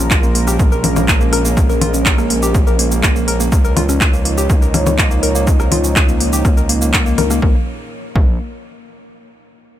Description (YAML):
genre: melodic techno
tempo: 123 BPM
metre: 4/4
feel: straight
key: Bb minor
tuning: A4 = 439 Hz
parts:
  - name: dark analog pad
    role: sustained chords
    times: 0.0-7.7 s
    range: F3 to Db5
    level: -22 LUFS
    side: right 1 dB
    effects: chorus, sidechain pumping
  - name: woody wave-folded pluck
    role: arpeggios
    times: 0.0-8.4 s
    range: Bb3 to Bb4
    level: -21 LUFS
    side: left 1 dB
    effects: chorus, sidechain pumping, tape echo
  - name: gritty driven synth bass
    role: bass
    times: 0.0-8.4 s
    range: Bb1 to Db2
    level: -19 LUFS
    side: equal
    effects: distortion, sidechain pumping
  - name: analog drone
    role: drone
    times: 0.0-7.5 s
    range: Bb2 to F3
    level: -30 LUFS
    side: left 1 dB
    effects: none
  - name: electronic kick drum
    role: drums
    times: 0.1-8.3 s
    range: none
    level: -14 LUFS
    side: equal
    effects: studio ambience
  - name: techno drum kit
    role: drums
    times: 0.1-7.4 s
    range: congas, handclaps, hi-hat, rim click, shaker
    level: -18 LUFS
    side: left 1 dB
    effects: studio ambience
room: little or no reverb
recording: none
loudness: -12 LUFS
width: side -12 dB against mid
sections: 0.0-7.4 A section; 7.4-9.4 B section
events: drop 0.0-7.4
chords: 0.0 Bbm7; 3.5 Dbadd9; 7.4 Bbm7